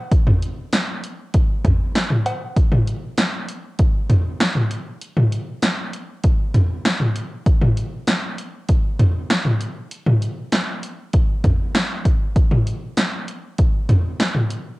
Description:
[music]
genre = pop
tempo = 98 BPM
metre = 4/4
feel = straight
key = none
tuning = none
[part]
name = punchy analog drum machine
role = drums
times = 0.1-14.6 s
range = cowbell, hi-hat, kick drum, snare drum, toms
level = -17 LUFS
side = equal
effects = cassette tape
[sound]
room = wet booth ambience, RT60 0.2 s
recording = home recording on cassette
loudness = -17 LUFS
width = side -20 dB against mid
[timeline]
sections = 0.0-2.6 A section; 2.6-14.8 B section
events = none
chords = none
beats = | 0.12 0.73 1.34 1.95 | 2.56 3.18 3.79 4.40 | 5.01 5.63 6.24 6.85 | 7.46 8.07 8.69 9.30 | 9.91 10.52 11.14 11.75 | 12.36 12.97 13.59 14.20

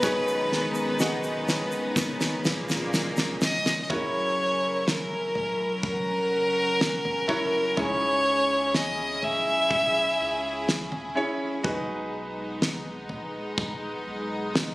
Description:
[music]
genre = pop ballad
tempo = 62 BPM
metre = 4/4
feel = straight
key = B major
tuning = A4 = 442 Hz
[part]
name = clear violin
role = melody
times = 0.0-10.7 s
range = A#4 to E5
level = -25 LUFS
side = equal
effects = none
[part]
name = clear symphonic cello section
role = second line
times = 0.0-3.9 s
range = A#2 to B3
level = -32 LUFS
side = equal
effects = none
[part]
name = bright concert grand piano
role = accompaniment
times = 0.0-14.7 s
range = G#2 to F#5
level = -32 LUFS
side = equal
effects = none
[part]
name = rich studio string section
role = sustained chords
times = 0.0-14.7 s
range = C#3 to A#4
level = -32 LUFS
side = equal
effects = none
[part]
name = warm sub bass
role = bass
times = 0.0-14.7 s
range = E1 to C#2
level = -43 LUFS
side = equal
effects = none
[part]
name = damped 70s drum kit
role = drums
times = 0.0-14.7 s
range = kick drum, snare drum, toms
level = -27 LUFS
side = equal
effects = none
[part]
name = egg shaker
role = percussion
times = 0.0-3.9 s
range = none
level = -42 LUFS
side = right 1 dB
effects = none
[sound]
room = light reverb, studio reverb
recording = recorded on a phone in the room, compression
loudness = -24 LUFS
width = side -20 dB against mid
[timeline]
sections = 0.0-3.9 A section; 3.9-14.7 B section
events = drum fill 0.0-3.9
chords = 0.0 B6; 3.9 F#7; 7.8 C#m; 11.6 B6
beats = | 0.03 1.00 1.97 2.94 | 3.90 4.87 5.84 6.81 | 7.78 8.74 9.71 10.68 | 11.65 12.61 13.58 14.55

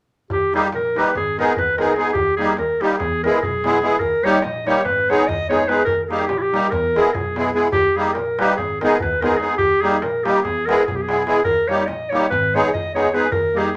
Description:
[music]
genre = balkan folk, Balkan wedding band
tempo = 290 BPM (eighths)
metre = 9/8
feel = straight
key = Eb phrygian dominant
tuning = A4 = 442 Hz
[part]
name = clear clarinet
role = melody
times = 0.3-13.8 s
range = Fb4 to Eb5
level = -22 LUFS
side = equal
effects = none
[part]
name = upright bass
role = bass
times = 0.3-13.5 s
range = Ab1 to E2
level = -34 LUFS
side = equal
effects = none
[part]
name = darbuka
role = percussion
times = 0.3-13.7 s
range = none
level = -33 LUFS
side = equal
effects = none
[part]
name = musette accordion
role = accompaniment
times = 0.5-13.7 s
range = G3 to Ab4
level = -22 LUFS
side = equal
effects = none
[sound]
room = wet studio reverb, RT60 0.6 s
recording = none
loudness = -19 LUFS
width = mono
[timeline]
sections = 0.3-13.8 A section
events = none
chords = 0.3 Eb; 1.1 Abm; 2.2 Eb; 3.0 E; 4.0 Eb; 4.8 Abm; 5.9 Eb; 6.7 E; 7.7 Eb; 8.6 Abm; 9.6 Eb; 10.4 E; 11.5 Eb; 12.3 Abm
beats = | 0.30 0.51 0.72 0.92 1.13 1.33 1.54 1.75 1.95 | 2.16 2.36 2.57 2.77 2.98 3.19 3.39 3.60 3.81 | 4.01 4.22 4.42 4.63 4.84 5.04 5.25 5.46 5.67 | 5.87 6.08 6.29 6.49 6.70 6.91 7.11 7.32 7.53 | 7.73 7.94 8.15 8.36 8.56 8.77 8.97 9.18 9.39 | 9.60 9.80 10.01 10.22 10.42 10.63 10.84 11.04 11.25 | 11.46 11.66 11.87 12.08 12.29 12.49 12.70 12.91 13.11 | 13.32 13.53 13.73

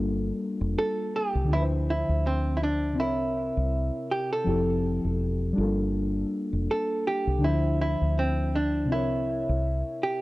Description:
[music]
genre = lo-fi hip hop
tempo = 81 BPM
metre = 4/4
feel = swing 57% on 16ths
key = D minor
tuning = A4 = 440 Hz
[part]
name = archtop guitar, miked and amplified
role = melody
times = 0.0-10.2 s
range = C4 to A4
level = -28 LUFS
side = right 2 dB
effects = low-pass filter, analog delay
[part]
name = muted felt-like synth keys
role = accompaniment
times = 0.0-10.2 s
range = C3 to Db5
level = -29 LUFS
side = left 1 dB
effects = chorus, cassette tape, low-pass filter
[part]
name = deep dub fingered electric bass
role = bass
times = 0.0-9.8 s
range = E1 to D2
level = -28 LUFS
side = equal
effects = none
[sound]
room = light reverb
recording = cassette tape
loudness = -24 LUFS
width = side -18 dB against mid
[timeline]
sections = 0.0-10.2 A section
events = none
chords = 0.0 Gm9; 1.5 Dm9; 3.0 C7b9; 4.5 Fmaj7; 5.6 Gm9; 7.4 Dm9; 8.9 C7b9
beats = 0.01 0.75 | 1.50 2.24 2.98 3.72 | 4.46 5.20 5.94 6.68 | 7.42 8.16 8.90 9.64

